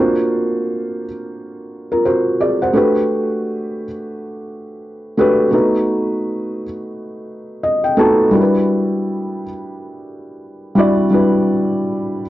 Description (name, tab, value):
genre	hip hop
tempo	86 BPM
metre	4/4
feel	swing 61% on 16ths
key	E minor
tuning	A4 = 440 Hz
part	felt-muted upright piano	solo	0.0-12.3 s	G3 to A5	-16 LUFS	equal	cassette tape, low-pass filter
room	wet studio reverb, RT60 0.6 s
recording	dark, warm production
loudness	-14 LUFS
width	side -15 dB against mid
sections	0.0-12.3 A section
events	felt piano fill 7.3-8.3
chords	0.0 D7alt; 2.7 Gmaj9; 5.5 B7; 8.3 Em9